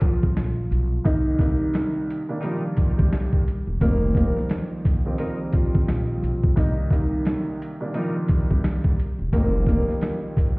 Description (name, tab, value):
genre	hip hop, boom-bap hip-hop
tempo	87 BPM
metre	4/4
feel	swing 59% on 16ths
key	C minor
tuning	A4 = 440 Hz
part	nylon-string guitar	melody	0.0-10.6 s	F3 to Eb5	-29 LUFS	equal	high-pass filter, low-pass filter, tape echo
part	warm horn section	stabs	0.0-8.2 s	F3 to Bb4	-38 LUFS	left 1 dB	high-pass filter, low-pass filter, plate reverb, tape echo
part	boom bap sampler-style drum kit	drums	0.0-10.6 s	hi-hat, kick drum, snare drum	-21 LUFS	equal	none
part	upright bass	bass	0.2-9.8 s	E1 to C2	-25 LUFS	equal	none
part	dark grand piano	accompaniment	1.0-10.6 s	C2 to Eb4	-27 LUFS	right 1 dB	cassette tape, high-pass filter, low-pass filter
room	little or no reverb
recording	heard muffled through a wall, stone room reverb, vinyl crackle, EQ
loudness	-20 LUFS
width	side -28 dB against mid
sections	0.0-10.6 A section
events	break 0.0-1.1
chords	0.0 F7sus4; 1.1 Cm7; 3.8 F7sus4; 6.6 Cm7; 9.3 F7sus4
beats	0.36 | 1.05 1.74 2.43 3.12 | 3.81 4.50 5.19 5.88 | 6.57 7.26 7.95 8.64 | 9.33 10.02